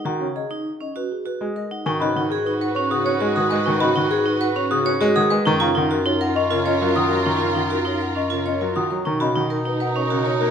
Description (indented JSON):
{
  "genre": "classical, minimalist pattern music",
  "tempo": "100 BPM",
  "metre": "3/4",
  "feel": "straight",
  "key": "unclear",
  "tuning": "A4 = 440 Hz",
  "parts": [
    { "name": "folk marimba with medium mallets", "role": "melody", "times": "0.0-10.5 s", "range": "Ab4 to Bb5", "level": "-26 LUFS", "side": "left 5 dB", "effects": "none" },
    { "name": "vibraphone with hard mallets", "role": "arpeggios", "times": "0.0-10.5 s", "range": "Db4 to Db5", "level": "-24 LUFS", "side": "right 6 dB", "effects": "none" },
    { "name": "clear concert grand piano", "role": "accompaniment", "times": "0.1-10.5 s", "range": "Db3 to Db4", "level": "-25 LUFS", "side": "left 1 dB", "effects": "none" },
    { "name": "celesta", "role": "arpeggios", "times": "0.1-10.2 s", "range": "Bb5 to Eb6", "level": "-27 LUFS", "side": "left 1 dB", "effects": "none" },
    { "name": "warm oboe", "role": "second line", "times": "1.9-10.5 s", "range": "Eb4 to Gb4", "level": "-29 LUFS", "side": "right 4 dB", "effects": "none" },
    { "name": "warm studio string section", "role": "sustained chords", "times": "1.9-10.5 s", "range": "Eb4 to Cb5", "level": "-28 LUFS", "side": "equal", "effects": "none" },
    { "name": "warm bass clarinet", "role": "bass", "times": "1.9-10.5 s", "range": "Gb2 to Cb3", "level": "-27 LUFS", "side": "left 1 dB", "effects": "none" }
  ],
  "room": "moderate scoring stage reverb, RT60 1.9 s",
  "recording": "close, detailed microphones",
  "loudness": "-19 LUFS",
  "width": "side -7 dB against mid",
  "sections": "0.0-1.9 A section; 1.9-10.5 B section",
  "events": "none",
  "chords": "0.0 Abm9; 1.9 Abm7; 5.5 Gbmaj7; 9.1 Cbmaj7"
}